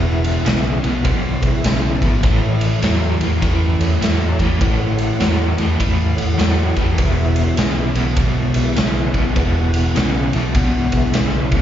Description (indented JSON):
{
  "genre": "blues rock power trio and southern rock",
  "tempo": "101 BPM",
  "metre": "4/4",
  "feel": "swing 63% on 8ths",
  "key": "E major",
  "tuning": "A4 = 440 Hz",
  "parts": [
    { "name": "mellow tonewheel organ", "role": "sustained chords", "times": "0.0-11.6 s", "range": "E4 to F#5", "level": "-26 LUFS", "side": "right 2 dB", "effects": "slow rotary speaker, chorus vibrato" },
    { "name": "crunchy overdriven guitar", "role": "riff", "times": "0.0-11.6 s", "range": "E2 to F#3", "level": "-20 LUFS", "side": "left 1 dB", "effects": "tremolo, slapback echo" },
    { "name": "vintage muted fingered electric bass", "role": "bass", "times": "0.0-11.6 s", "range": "E1 to E2", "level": "-19 LUFS", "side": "equal", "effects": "none" },
    { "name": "raw garage drum kit", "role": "drums", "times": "0.2-11.6 s", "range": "kick drum, ride cymbal, snare drum", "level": "-20 LUFS", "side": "equal", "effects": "none" }
  ],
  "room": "light reverb",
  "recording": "live gig heard through the venue's PA, recital hall reverb, nothing above 7.5 kHz",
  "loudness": "-15 LUFS",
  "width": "side -10 dB against mid",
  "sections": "0.0-11.6 A section",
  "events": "none",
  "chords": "0.0 E; 2.2 A; 7.0 E"
}